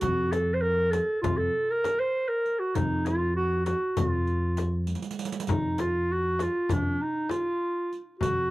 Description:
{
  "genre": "Turkish makam ensemble",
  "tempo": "198 BPM (eighths)",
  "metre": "9/8",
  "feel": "straight",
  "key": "F makam hicaz",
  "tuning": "A4 = 440 Hz",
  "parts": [
    { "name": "mellow clarinet", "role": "melody", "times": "0.0-8.5 s", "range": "D4-41c to C5", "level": "-26 LUFS", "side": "right 1 dB", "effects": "cassette tape, plate reverb" },
    { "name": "upright bass", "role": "bass", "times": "0.0-8.5 s", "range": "F2", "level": "-29 LUFS", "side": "equal", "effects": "none" },
    { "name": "darbuka", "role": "percussion", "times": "0.0-8.4 s", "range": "none", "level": "-38 LUFS", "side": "left 4 dB", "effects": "none" },
    { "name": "frame drum", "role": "percussion", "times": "0.0-8.4 s", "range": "none", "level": "-32 LUFS", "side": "left 4 dB", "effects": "none" },
    { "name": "riq", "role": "percussion", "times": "0.0-8.4 s", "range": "none", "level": "-38 LUFS", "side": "right 7 dB", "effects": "none" }
  ],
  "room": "light reverb",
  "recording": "home recording on cassette",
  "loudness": "-25 LUFS",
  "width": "side -18 dB against mid",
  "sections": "0.0-8.5 A section",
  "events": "drum fill 4.9-5.5",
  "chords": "none"
}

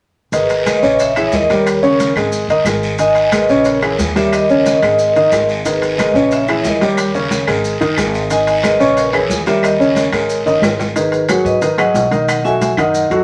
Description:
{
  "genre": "latin, salsa",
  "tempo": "181 BPM",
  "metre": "4/4",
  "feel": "straight",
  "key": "G# harmonic minor",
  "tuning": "A4 = 441 Hz",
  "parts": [
    { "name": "vibraphone with medium hard mallets", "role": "melody", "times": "0.3-13.2 s", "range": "G#4 to G#5", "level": "-18 LUFS", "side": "equal", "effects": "none" },
    { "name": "warm upright piano", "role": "accompaniment", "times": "0.3-13.2 s", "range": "C#3 to D#5", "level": "-18 LUFS", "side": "equal", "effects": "none" },
    { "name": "upright bass", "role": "bass", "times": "0.3-13.2 s", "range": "G1 to G#2", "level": "-28 LUFS", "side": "equal", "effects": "none" },
    { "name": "congas", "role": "percussion", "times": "0.3-13.2 s", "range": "none", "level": "-28 LUFS", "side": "equal", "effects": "none" },
    { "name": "guiro", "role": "percussion", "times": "0.3-11.0 s", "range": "none", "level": "-28 LUFS", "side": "equal", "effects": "none" },
    { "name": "maracas", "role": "percussion", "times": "0.3-13.2 s", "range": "none", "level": "-33 LUFS", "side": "equal", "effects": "none" },
    { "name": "timbales", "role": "percussion", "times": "0.3-13.2 s", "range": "none", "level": "-26 LUFS", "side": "equal", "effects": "none" },
    { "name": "claves", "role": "percussion", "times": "0.7-12.9 s", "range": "none", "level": "-28 LUFS", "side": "equal", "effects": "none" }
  ],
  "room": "wet studio reverb, RT60 0.7 s",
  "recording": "none",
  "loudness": "-14 LUFS",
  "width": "mono",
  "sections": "0.3-11.0 A section; 11.0-13.2 B section",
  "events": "drum fill 10.5-11.0",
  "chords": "0.3 G#madd9; 1.0 A#m7b5; 1.7 D#7; 2.3 G#madd9; 3.7 A#m7b5; 4.3 D#7; 5.0 G#madd9; 6.3 A#m7b5; 7.0 D#7; 7.6 G#madd9; 9.0 A#m7b5; 9.6 D#7; 10.3 G#sus2; 11.0 G#m7; 12.3 B6"
}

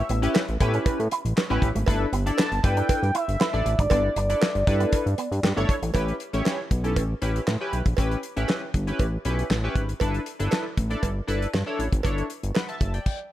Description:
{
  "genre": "early-eighties boogie funk",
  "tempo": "118 BPM",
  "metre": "4/4",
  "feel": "straight",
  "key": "unclear",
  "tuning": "A4 = 441 Hz",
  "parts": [
    { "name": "warm velvety synth lead", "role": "melody", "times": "0.0-5.7 s", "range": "D5 to A5", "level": "-28 LUFS", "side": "equal", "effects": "chorus" },
    { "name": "chorused polysynth", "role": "accompaniment", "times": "0.0-13.2 s", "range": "C#4 to B5", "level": "-29 LUFS", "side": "left 1 dB", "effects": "none" },
    { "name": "fat analog bass", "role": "bass", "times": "0.0-13.0 s", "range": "F#1 to A2", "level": "-26 LUFS", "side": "equal", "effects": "none" },
    { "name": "electric guitar with an envelope filter", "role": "riff", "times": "0.1-5.9 s", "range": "A3 to E4", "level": "-32 LUFS", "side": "right 4 dB", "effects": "lush chorus" },
    { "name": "damped 70s drum kit", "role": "drums", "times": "0.1-13.2 s", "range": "crash cymbal, handclaps, hi-hat, kick drum, snare drum", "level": "-26 LUFS", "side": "equal", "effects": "none" },
    { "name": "cowbell", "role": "percussion", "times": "0.3-12.7 s", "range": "none", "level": "-33 LUFS", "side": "right 8 dB", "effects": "none" }
  ],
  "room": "small room ambience",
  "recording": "none",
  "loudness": "-22 LUFS",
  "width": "side -13 dB against mid",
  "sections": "0.0-5.9 A section; 5.9-13.3 B section",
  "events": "stop 13.1",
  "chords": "0.0 A9; 1.9 G69; 5.9 A9; 10.0 G69"
}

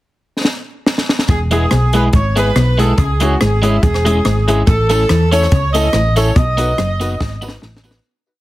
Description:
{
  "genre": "ska",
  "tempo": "142 BPM",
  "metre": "4/4",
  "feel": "swing 54% on 8ths",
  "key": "E major",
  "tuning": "A4 = 440 Hz",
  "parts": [
    { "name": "compact cocktail drum kit", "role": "drums", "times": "0.4-8.0 s", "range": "hi-hat, kick drum, rim click, snare drum", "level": "-17 LUFS", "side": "equal", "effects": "none" },
    { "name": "warm horn section", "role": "melody", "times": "1.3-7.9 s", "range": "E4 to D#5", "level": "-18 LUFS", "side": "equal", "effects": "none" },
    { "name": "semi-hollow electric guitar", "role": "riff", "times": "1.3-7.8 s", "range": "E2 to E3", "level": "-23 LUFS", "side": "left 2 dB", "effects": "none" },
    { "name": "hollow-body short-scale fingered electric bass", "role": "bass", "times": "1.3-8.0 s", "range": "E1 to E2", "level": "-16 LUFS", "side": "equal", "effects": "none" },
    { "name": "electric guitar at the edge of break-up", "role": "accompaniment", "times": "1.5-8.0 s", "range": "G#3 to B4", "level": "-20 LUFS", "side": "right 3 dB", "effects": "none" },
    { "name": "warm upright piano", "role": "stabs", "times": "1.5-8.0 s", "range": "G#3 to B4", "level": "-21 LUFS", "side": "left 3 dB", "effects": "tape echo" },
    { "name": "tambourine", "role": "percussion", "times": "4.9-7.9 s", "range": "none", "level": "-33 LUFS", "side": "right 3 dB", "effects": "tape echo" }
  ],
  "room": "light reverb, small room reverb",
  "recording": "heavily compressed radio sound, multiband compression",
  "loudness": "-12 LUFS",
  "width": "side -16 dB against mid",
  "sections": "0.0-1.3 pickup bar; 1.3-8.0 head",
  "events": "drum fill 0.4-1.3, 7.2-8.0; fade-out 6.4-8.0",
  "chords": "0.0 N.C.; 1.3 E; 3.0 C#m; 4.7 A; 6.4 B"
}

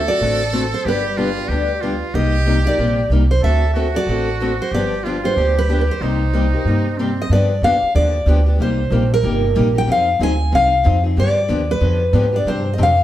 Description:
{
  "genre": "acoustic string swing (jazz manouche)",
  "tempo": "186 BPM",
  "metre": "4/4",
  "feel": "swing 60% on 8ths",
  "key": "unclear",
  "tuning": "A4 = 440 Hz",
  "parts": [
    { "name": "picked steel-string acoustic guitar", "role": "melody", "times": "0.0-13.0 s", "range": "Bb4 to Ab5", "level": "-20 LUFS", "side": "equal", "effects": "slapback echo" },
    { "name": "trumpet with metal mute", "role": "second line", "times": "0.0-7.3 s", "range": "C4 to A4", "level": "-24 LUFS", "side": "right 3 dB", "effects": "none" },
    { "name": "upright bass", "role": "bass", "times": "0.0-13.0 s", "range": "G1 to Ab2", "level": "-18 LUFS", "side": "equal", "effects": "none" },
    { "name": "picked steel-string acoustic guitar", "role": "accompaniment", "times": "0.1-12.9 s", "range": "C3 to A4", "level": "-22 LUFS", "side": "left 3 dB", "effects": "none" }
  ],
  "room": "wet studio reverb, RT60 0.8 s",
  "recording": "heard from further back in the room",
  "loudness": "-15 LUFS",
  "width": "side -13 dB against mid",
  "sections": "0.0-7.3 A section; 7.3-13.0 B section",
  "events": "none",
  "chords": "0.0 D7; 0.8 G; 2.1 Cm7; 3.4 D7; 4.7 G7; 6.0 Cm7; 7.3 G7; 8.6 Cm7; 9.9 Fm7; 11.2 G7; 12.5 G7sus4"
}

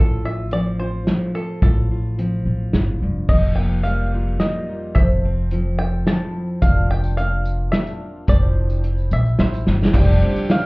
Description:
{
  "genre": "indie folk with a building arrangement",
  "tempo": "108 BPM",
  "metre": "3/4",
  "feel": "straight",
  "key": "F major",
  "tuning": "A4 = 442 Hz",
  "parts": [
    { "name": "bluegrass banjo", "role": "melody", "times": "0.0-10.7 s", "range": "A4 to A5", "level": "-27 LUFS", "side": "equal", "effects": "none" },
    { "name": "fingerpicked steel-string acoustic guitar", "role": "accompaniment", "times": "0.0-8.3 s", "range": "F2 to A4", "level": "-25 LUFS", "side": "left 1 dB", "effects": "none" },
    { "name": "upright bass", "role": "bass", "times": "0.0-10.2 s", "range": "F1 to Bb1", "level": "-19 LUFS", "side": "equal", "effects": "none" },
    { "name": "natural country drum kit", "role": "drums", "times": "0.5-10.6 s", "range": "crash cymbal, hi-hat, kick drum, ride cymbal, snare drum", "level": "-19 LUFS", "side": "equal", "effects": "none" },
    { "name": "picked twelve-string acoustic guitar", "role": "accompaniment", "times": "3.3-10.7 s", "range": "F2 to A4", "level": "-30 LUFS", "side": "left 1 dB", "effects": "none" },
    { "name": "tambourine", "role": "percussion", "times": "6.6-10.5 s", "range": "none", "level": "-52 LUFS", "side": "right 2 dB", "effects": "none" },
    { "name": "rich fiddle", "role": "second line", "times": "9.9-10.7 s", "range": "G4", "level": "-29 LUFS", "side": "right 2 dB", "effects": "none" },
    { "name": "felt-muted upright piano", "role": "accompaniment", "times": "9.9-10.7 s", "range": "F1 to D5", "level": "-25 LUFS", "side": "right 2 dB", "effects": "none" },
    { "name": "group handclap", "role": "percussion", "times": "9.9-10.1 s", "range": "none", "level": "-34 LUFS", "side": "left 2 dB", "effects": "none" },
    { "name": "hand-pumped harmonium", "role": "sustained chords", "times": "10.0-10.7 s", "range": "D3 to G4", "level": "-30 LUFS", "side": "equal", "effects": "none" }
  ],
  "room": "little or no reverb",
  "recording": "heard muffled through a wall, club reverb, EQ",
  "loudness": "-17 LUFS",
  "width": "side -26 dB against mid",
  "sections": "0.0-3.3 A section; 3.3-9.9 B section",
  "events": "drum fill 9.7",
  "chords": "0.0 F/A; 3.3 Ebadd9/F; 5.0 Fmaj7; 6.6 Bb6/F; 8.3 Cadd9/F; 9.9 Csus2/F"
}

